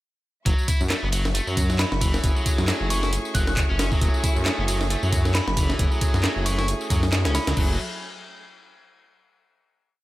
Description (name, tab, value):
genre	breakbeat, breaks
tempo	135 BPM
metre	4/4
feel	swing 57% on 16ths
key	F# minor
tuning	A4 = 440 Hz
part	dark chamber string section	sustained chords	0.5-7.8 s	F#3 to C#6	-36 LUFS	left 2 dB	vintage 12-bit sampler grit, sidechain pumping
part	high-gain distorted guitar	riff	0.5-7.8 s	E3 to E4	-31 LUFS	equal	distortion, overdrive, digital delay
part	detuned saw bass	bass	0.5-7.8 s	F#1 to F#2	-24 LUFS	equal	none
part	breakbeat sampler-style drum kit	drums	0.5-7.7 s	crash cymbal, hi-hat, kick drum, snare drum	-24 LUFS	equal	none
part	punchy analog drum machine	drums	0.5-7.6 s	handclaps, ride cymbal, tambourine	-31 LUFS	equal	none
part	glassy synth bell	melody	1.8-7.6 s	B5 to F#6	-34 LUFS	right 1 dB	chorus, small speaker sound, vintage 12-bit sampler grit, digital delay
part	mellow brass ensemble	stabs	1.9-7.7 s	A3 to G#4	-32 LUFS	right 2 dB	digital delay
room	digital ambience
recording	none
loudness	-20 LUFS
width	side -17 dB against mid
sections	0.5-7.6 drop; 7.6-9.3 final chord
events	drop 0.5-7.6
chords	0.5 F#m7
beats	| 0.46 0.90 1.35 1.79 | 2.24 2.68 3.13 3.57 | 4.01 4.46 4.90 5.35 | 5.79 6.24 6.68 7.13 | 7.57